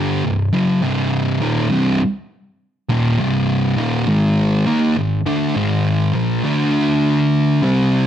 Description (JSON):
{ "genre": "metal", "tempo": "102 BPM", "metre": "4/4", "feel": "straight", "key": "C minor", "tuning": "A4 = 439 Hz", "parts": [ { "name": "fuzz guitar", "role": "solo", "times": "0.0-8.1 s", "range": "C2 to Eb4", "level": "-15 LUFS", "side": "equal", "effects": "distortion" } ], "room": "light reverb", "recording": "dark, warm production", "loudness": "-15 LUFS", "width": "side -10 dB against mid", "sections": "0.0-8.1 A section", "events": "none", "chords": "0.0 Cm; 4.1 Ab5; 6.4 D5" }